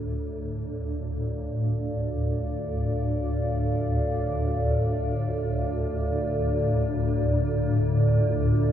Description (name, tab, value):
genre	dark ambient drone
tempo	free time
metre	none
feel	none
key	D minor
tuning	A4 = 440 Hz
part	dark analog pad	sustained chords	0.0-8.7 s	D3 to F5	-30 LUFS	equal	chorus, phaser
part	swarming drone	drone	0.0-8.7 s	D2 to A2	-25 LUFS	equal	built-in reverb
room	wet cathedral reverb, RT60 6.3 s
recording	dark, warm production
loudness	-24 LUFS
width	side -10 dB against mid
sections	0.0-8.7 A section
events	fade-in on analog synth pad 0.0-8.7; filter sweep on synth drone 0.0-8.7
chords	0.0 Dm